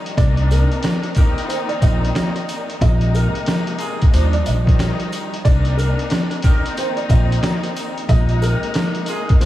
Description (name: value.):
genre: hip hop, boom-bap hip-hop.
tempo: 91 BPM.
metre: 4/4.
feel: swing 63% on 16ths.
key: C minor.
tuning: A4 = 442 Hz.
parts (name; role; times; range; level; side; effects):
dark upright piano; melody; 0.0-9.5 s; Bb4 to Eb5; -27 LUFS; right 2 dB; high-pass filter, low-pass filter, diffuse ambient delay.
warm studio string section; accompaniment; 0.0-9.5 s; C3 to Eb4; -25 LUFS; left 2 dB; high-pass filter, low-pass filter.
trip hop sampler-style drum kit; drums; 0.1-9.5 s; hi-hat, kick drum, snare drum; -18 LUFS; equal; none.
upright bass; bass; 0.2-9.5 s; Bb1 to Eb2; -17 LUFS; equal; none.
sleigh bells; percussion; 0.2-9.5 s; none; -40 LUFS; right 4 dB; none.
mellow horn section; stabs; 1.2-9.3 s; Eb4 to Bb4; -32 LUFS; equal; none.
room: light reverb, small room ambience.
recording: none.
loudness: -15 LUFS.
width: side -14 dB against mid.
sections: 0.0-9.5 A section.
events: none.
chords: 0.2 Cm9; 2.8 Bb9sus4; 4.1 Ebmaj9; 5.5 Cm9; 8.1 Bb9sus4.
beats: | 0.18 0.84 1.50 2.15 | 2.81 3.47 4.13 4.79 | 5.45 6.11 6.77 7.43 | 8.09 8.75 9.41.